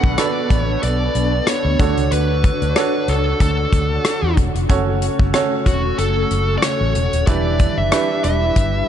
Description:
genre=1980s-style pop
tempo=93 BPM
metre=4/4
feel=swing 55% on 16ths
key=D major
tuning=A4 = 440 Hz
part: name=high-gain lead guitar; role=melody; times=0.0-8.9 s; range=F#4 to F#5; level=-22 LUFS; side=left 2 dB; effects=distortion, tape echo
part: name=bright baby grand piano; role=accompaniment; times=0.0-8.9 s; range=B2 to C#5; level=-23 LUFS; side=right 6 dB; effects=none
part: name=ensemble organ-string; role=sustained chords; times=0.0-8.9 s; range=C#3 to C#5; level=-25 LUFS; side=equal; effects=ensemble chorus
part: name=vintage muted fingered electric bass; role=bass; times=0.0-8.8 s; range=Eb1 to E2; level=-20 LUFS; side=equal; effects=none
part: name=modern studio drum kit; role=drums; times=0.0-8.7 s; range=hi-hat, kick drum, rim click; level=-20 LUFS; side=equal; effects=none
room=light reverb, small room ambience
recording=dark, warm production, nothing above 10.9 kHz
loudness=-15 LUFS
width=side -9 dB against mid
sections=0.0-8.9 A section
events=none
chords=0.0 Bm7; 1.8 Dmaj7; 4.7 F#m; 7.3 Em7

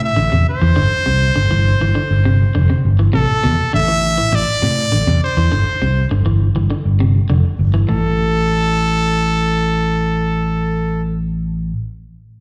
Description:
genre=afrobeat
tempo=101 BPM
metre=4/4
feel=straight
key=unclear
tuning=A4 = 440 Hz
part: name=brilliant trumpet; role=melody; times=0.0-11.0 s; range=A4 to E5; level=-21 LUFS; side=equal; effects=slapback echo
part: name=electric guitar at the edge of break-up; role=arpeggios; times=0.0-8.1 s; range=A2 to E3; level=-23 LUFS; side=equal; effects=spring reverb, slapback echo
part: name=fingered electric bass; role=bass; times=0.0-11.7 s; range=F1 to A2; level=-18 LUFS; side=equal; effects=none
room=little or no reverb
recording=live gig heard through the venue's PA, recital hall reverb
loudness=-16 LUFS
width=mono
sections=0.0-7.9 A section; 7.9-10.3 B section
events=none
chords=0.0 Am; 0.8 Gsus4; 3.1 Am; 5.5 Gsus4; 7.9 N.C.

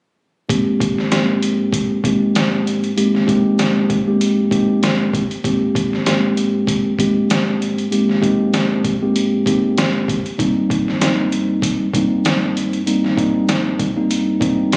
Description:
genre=hip hop, boom-bap hip-hop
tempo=97 BPM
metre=4/4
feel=swing 55% on 16ths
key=Ab major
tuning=A4 = 441 Hz
part: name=mellow tine electric piano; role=accompaniment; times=0.5-14.8 s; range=G2 to G4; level=-18 LUFS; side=equal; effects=high-pass filter, low-pass filter
part: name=trip hop sampler-style drum kit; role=drums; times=0.5-14.8 s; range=hi-hat, kick drum, snare drum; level=-23 LUFS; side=equal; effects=vintage 12-bit sampler grit
room=light reverb, digital ambience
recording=recorded on a phone in the room, studio reverb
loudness=-17 LUFS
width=mono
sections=0.5-5.4 A section; 5.4-14.8 B section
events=filter sweep on tine electric piano 0.5-5.4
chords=0.5 Abmaj7; 10.4 Cm7/G

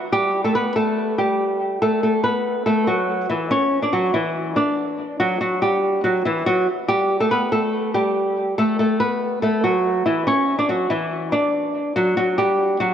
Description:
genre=hip hop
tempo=142 BPM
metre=4/4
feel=half-time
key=unclear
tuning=A4 = 438 Hz
part: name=flamenco guitar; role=solo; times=0.1-12.9 s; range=E3 to D5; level=-18 LUFS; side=equal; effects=low-pass filter, diffuse ambient delay
room=wet plate reverb, RT60 2.9 s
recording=dreamy mix soaked in reverb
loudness=-18 LUFS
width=side -9 dB against mid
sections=0.0-12.9 A section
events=none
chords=0.1 Gadd9; 1.8 A5; 3.5 Dmaj9; 5.2 Emadd9; 6.9 Gadd9; 8.6 A5; 10.3 Dmaj9; 12.0 Emadd9 (rootless)

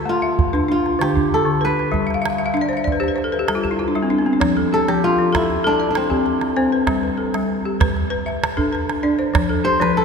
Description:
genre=west african traditional, West African string and xylophone music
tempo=97 BPM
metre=4/4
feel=straight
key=F lydian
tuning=A4 = 440 Hz
part: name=kora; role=melody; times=0.0-10.0 s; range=C4 to C5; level=-22 LUFS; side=equal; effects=none
part: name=balafon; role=arpeggios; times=0.0-10.0 s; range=D3 to F5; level=-19 LUFS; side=left 2 dB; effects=none
part: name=calabash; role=percussion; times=0.4-10.0 s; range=none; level=-24 LUFS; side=right 3 dB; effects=none
room=wet cathedral reverb, RT60 4.7 s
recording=recorded in a church or concert hall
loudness=-17 LUFS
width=side -6 dB against mid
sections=0.0-4.4 A section; 4.4-10.0 B section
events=balafon fill 2.1-4.4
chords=0.0 Dm; 1.9 G; 4.4 F; 6.9 G; 9.3 F

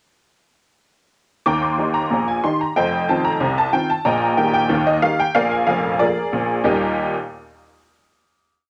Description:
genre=ragtime piano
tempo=92 BPM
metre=2/4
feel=straight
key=Eb major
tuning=A4 = 440 Hz
part: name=honky-tonk upright piano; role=solo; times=1.5-7.1 s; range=F1 to D6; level=-19 LUFS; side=equal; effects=cassette tape
room=light reverb, small room reverb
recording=home recording on cassette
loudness=-19 LUFS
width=mono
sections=1.5-6.7 A section; 6.7-8.0 final chord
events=none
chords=1.5 Eb; 2.8 F5; 4.1 Eb/Bb; 5.4 Bb7; 6.7 Eb

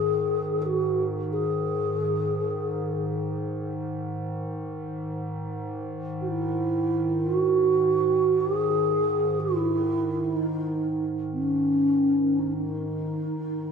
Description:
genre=world meditative, free-time meditation music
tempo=free time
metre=none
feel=none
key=unclear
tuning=A4 = 443 Hz
part: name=mellow hollow bass flute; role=melody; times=0.0-13.7 s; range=C#4 to G#4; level=-24 LUFS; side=right 1 dB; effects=tape echo
part: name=warbly tape-like pad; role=drone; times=0.0-13.7 s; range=G#2 to D#3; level=-30 LUFS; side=right 1 dB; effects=chorus, built-in reverb
room=wet lush hall reverb, RT60 1.8 s, small room ambience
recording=none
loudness=-24 LUFS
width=side -6 dB against mid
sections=0.0-13.7 A section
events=none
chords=none

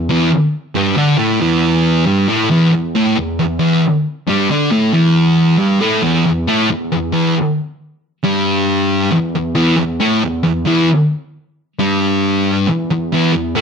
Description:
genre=metal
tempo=68 BPM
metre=4/4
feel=straight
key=E minor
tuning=A4 = 440 Hz
part: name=thick fuzz guitar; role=solo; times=0.0-13.6 s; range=E2 to D4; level=-12 LUFS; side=equal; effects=distortion
room=moderate studio reverb, RT60 0.9 s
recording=none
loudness=-12 LUFS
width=side -6 dB against mid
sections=0.0-13.6 A section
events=none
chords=0.0 Em

